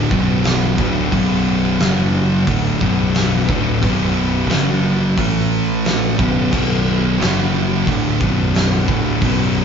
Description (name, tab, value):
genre	stoner and doom metal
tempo	89 BPM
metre	4/4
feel	straight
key	B minor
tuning	A4 = 444 Hz
part	ensemble organ-string	sustained chords	0.0-9.6 s	F#3 to B4	-32 LUFS	left 1 dB	none
part	thick fuzz guitar	riff	0.0-9.6 s	B1 to A3	-18 LUFS	left 6 dB	distortion
part	thick fuzz guitar	riff	0.0-9.6 s	B1 to A3	-19 LUFS	right 7 dB	distortion
part	fuzz fingered electric bass	bass	0.0-9.6 s	B0 to A1	-26 LUFS	equal	overdrive
part	oversized low-tuned drum kit	drums	0.1-9.4 s	crash cymbal, hi-hat, kick drum, snare drum	-21 LUFS	right 1 dB	none
room	light reverb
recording	band playing live in one room, nothing above 7.5 kHz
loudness	-14 LUFS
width	side -7 dB against mid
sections	0.0-9.6 A section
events	none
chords	0.0 Bm; 1.8 F#5; 2.5 Bm; 4.5 F#5; 5.2 A5; 6.2 B5; 7.2 F#5; 7.9 Bm